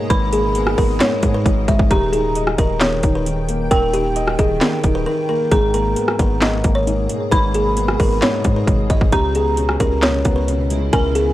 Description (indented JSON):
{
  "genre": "hip hop, trap",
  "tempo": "133 BPM",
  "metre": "4/4",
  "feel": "half-time",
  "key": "G# harmonic minor",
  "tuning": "A4 = 441 Hz",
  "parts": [
    { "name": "buzzing kalimba", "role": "melody", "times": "0.0-11.3 s", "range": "G4 to E5", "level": "-21 LUFS", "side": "equal", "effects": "tape echo" },
    { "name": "dark detuned synth bell", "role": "second line", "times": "0.0-11.3 s", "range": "G5 to B5", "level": "-26 LUFS", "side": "right 1 dB", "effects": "chorus, tremolo, tape echo" },
    { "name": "dark concert grand piano", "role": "accompaniment", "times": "0.0-11.3 s", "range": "G#2 to D#5", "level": "-22 LUFS", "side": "left 1 dB", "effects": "none" },
    { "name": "granular cloud pad", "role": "sustained chords", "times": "0.0-11.3 s", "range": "B2 to G5", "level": "-29 LUFS", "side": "left 1 dB", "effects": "built-in reverb" },
    { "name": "long sustained 808-style bass", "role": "bass", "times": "0.1-11.3 s", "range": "D#1 to G#2", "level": "-22 LUFS", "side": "equal", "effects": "none" },
    { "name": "trap drum kit", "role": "drums", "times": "0.1-11.3 s", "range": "handclaps, hi-hat, kick drum, rim click, snare drum", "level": "-18 LUFS", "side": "equal", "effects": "overdrive" }
  ],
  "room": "little or no reverb",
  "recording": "dry, gritty hardware recording",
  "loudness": "-15 LUFS",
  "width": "side -15 dB against mid",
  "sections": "0.0-11.3 A section",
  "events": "break 5.1-5.5",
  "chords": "0.0 G#madd9; 1.9 D#; 5.5 G#madd9; 9.1 C#m7"
}